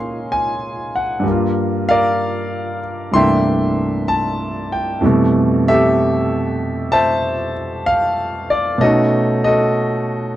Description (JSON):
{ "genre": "solo jazz", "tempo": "64 BPM", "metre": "4/4", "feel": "swing 68% on 8ths", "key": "unclear", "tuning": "A4 = 440 Hz", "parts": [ { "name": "warm concert grand piano", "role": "solo", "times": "0.0-10.4 s", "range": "C2 to C6", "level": "-15 LUFS", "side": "equal", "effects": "none" } ], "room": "small room ambience", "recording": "dry, close 1970s-style studio recording", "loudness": "-15 LUFS", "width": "side -13 dB against mid", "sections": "0.0-10.4 A section", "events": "none", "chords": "0.0 Bbm9; 1.2 Gm7; 3.1 C13; 5.0 Fmaj9#11; 8.8 Cb9", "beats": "0.30 | 1.24 2.19 3.13 4.07 | 5.02 5.96 6.91 7.85 | 8.79 9.74" }